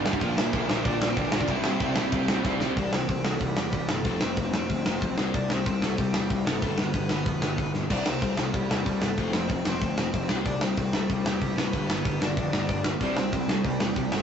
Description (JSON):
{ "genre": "punk rock", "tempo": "187 BPM", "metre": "4/4", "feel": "straight", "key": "C major", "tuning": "A4 = 440 Hz", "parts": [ { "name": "distorted electric guitar", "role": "riff", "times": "0.0-2.8, 13.0-14.2 s", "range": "G2 to C4", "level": "-30 LUFS", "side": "right 6 dB", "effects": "distortion" }, { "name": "sludgy distorted guitar", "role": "riff", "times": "0.0-14.2 s", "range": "G2 to E4", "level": "-30 LUFS", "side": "left 4 dB", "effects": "overdrive" }, { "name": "fuzz picked electric bass", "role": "bass", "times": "0.0-14.2 s", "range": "F1 to C3", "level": "-34 LUFS", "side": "equal", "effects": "overdrive" }, { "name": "big rock drum kit", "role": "drums", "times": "0.1-14.2 s", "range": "crash cymbal, hi-hat, kick drum, snare drum", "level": "-27 LUFS", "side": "right 1 dB", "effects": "none" }, { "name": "dark smooth lead guitar", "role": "melody", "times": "0.2-14.2 s", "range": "G3 to F5", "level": "-34 LUFS", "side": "left 1 dB", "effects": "overdrive" } ], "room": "light reverb", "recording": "rough rehearsal-room recording, nothing above 7.9 kHz", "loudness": "-24 LUFS", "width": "side -8 dB against mid", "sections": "0.0-2.8 A section; 2.8-14.2 B section", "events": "drum fill 2.5-2.8, 7.7", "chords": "0.2 Bb; 1.5 C; 4.1 F; 5.2 C5; 6.6 G; 7.9 C5; 9.2 F; 10.3 C5; 11.7 G; 13.0 C5" }